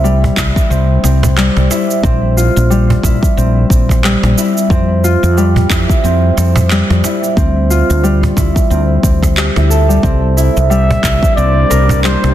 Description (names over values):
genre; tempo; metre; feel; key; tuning
organic downtempo; 90 BPM; 4/4; swing 58% on 16ths; C mixolydian; A4 = 440 Hz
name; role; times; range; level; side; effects
Celtic harp; arpeggios; 0.0-12.3 s; G3 to Bb4; -14 LUFS; left 1 dB; ping-pong delay
woody fretless electric bass; bass; 0.0-12.3 s; Bb1 to F2; -12 LUFS; equal; tube saturation, wide subtle chorus, sidechain pumping
electronic shaker and handclaps; drums; 0.1-12.2 s; none; -20 LUFS; right 1 dB; studio reverb
cajon; percussion; 0.2-12.3 s; none; -19 LUFS; right 2 dB; none
electronic kick drum; drums; 0.4-11.3 s; none; -13 LUFS; equal; studio reverb
granular cloud pad; sustained chords; 11.2-12.3 s; Bb3 to C5; -26 LUFS; equal; built-in reverb, sidechain pumping
trumpet with bucket mute; melody; 10.7-12.3 s; C5 to E5; -16 LUFS; equal; ping-pong delay
room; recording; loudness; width
light reverb, studio ambience; dense, heavily limited modern master; -9 LUFS; side -12 dB against mid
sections
0.0-12.3 A section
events
none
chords
0.0 C; 2.0 Bb5; 4.7 Fsus2; 7.4 Dm9; 10.0 C9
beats
0.04 0.70 1.37 | 2.04 2.70 3.37 4.04 | 4.70 5.37 6.04 6.70 | 7.37 8.04 8.70 9.37 | 10.04 10.70 11.37 12.04